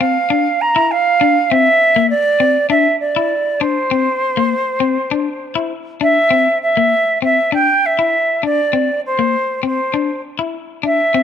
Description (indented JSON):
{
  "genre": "highlife",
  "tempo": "100 BPM",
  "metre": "4/4",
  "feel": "straight",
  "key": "unclear",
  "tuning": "A4 = 440 Hz",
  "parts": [
    { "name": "silver concert flute", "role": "melody", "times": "0.0-11.2 s", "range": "C5 to Bb5", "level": "-14 LUFS", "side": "right 2 dB", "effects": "none" },
    { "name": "electric guitar at the edge of break-up", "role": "accompaniment", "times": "0.0-11.2 s", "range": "Bb3 to E4", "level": "-19 LUFS", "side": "left 8 dB", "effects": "none" }
  ],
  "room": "moderate spring reverb, RT60 1.6 s",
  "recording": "none",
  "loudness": "-13 LUFS",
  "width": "side -8 dB against mid",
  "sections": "0.0-6.3 A section; 6.3-11.2 B section",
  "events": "none",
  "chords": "0.0 Bbadd9"
}